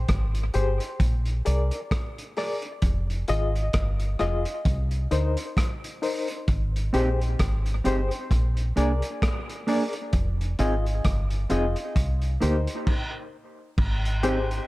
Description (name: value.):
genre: dub reggae.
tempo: 66 BPM.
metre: 4/4.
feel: swing 59% on 16ths.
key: unclear.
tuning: A4 = 438 Hz.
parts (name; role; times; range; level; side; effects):
deep dub fingered electric bass; bass; 0.0-14.6 s; F1 to D2; -25 LUFS; equal; none.
crunchy breakbeat drum kit; drums; 0.1-14.7 s; crash cymbal, hi-hat, kick drum, rim click; -27 LUFS; equal; none.
barky reed electric piano; stabs; 0.5-14.5 s; Eb4 to Eb5; -30 LUFS; left 3 dB; overdrive, fast tremolo, tape echo.
mellow electric guitar; accompaniment; 6.9-14.4 s; Bb3 to Ab4; -30 LUFS; right 2 dB; tape echo.
bongos; percussion; 14.2-14.5 s; none; barely audible; none; none.
room: light reverb, small room ambience.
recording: none.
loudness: -23 LUFS.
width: side -19 dB against mid.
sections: 0.0-13.8 A section.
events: break 0.0-6.5; stop 12.9-13.8.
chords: 0.0 Abmaj7; 1.0 Bb7; 2.8 Fm7; 4.7 Cm7; 6.5 Abmaj7; 8.3 Bb7; 10.1 Fm7; 12.0 Cm7; 13.8 Abmaj7.